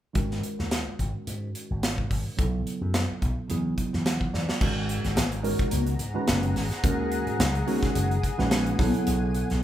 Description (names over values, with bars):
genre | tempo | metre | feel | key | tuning
electric jazz fusion | 108 BPM | 4/4 | swing 54% on 16ths | G# minor | A4 = 440 Hz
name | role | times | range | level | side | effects
tine electric piano | accompaniment | 0.1-9.6 s | C#3 to F#5 | -30 LUFS | right 2 dB | phaser
slap bass with an envelope filter | bass | 0.2-9.6 s | F#1 to G#2 | -29 LUFS | equal | none
modern studio drum kit | drums | 0.2-9.6 s | crash cymbal, hi-hat, kick drum, snare drum | -28 LUFS | equal | none
shimmering ambient pad | sustained chords | 5.4-9.6 s | G#4 to C#6 | -34 LUFS | left 3 dB | chorus, built-in reverb
congas | percussion | 4.6-9.1 s | none | -34 LUFS | left 4 dB | none
room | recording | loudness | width
light reverb | band playing live in one room | -24 LUFS | side -12 dB against mid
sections
0.2-4.6 A section; 4.6-9.6 B section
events
tine electric piano fill 3.8-4.6; drum fill 4.3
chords
0.2 G#9sus4; 2.4 B5; 3.5 Eadd9; 4.6 G#m9; 8.8 Bm9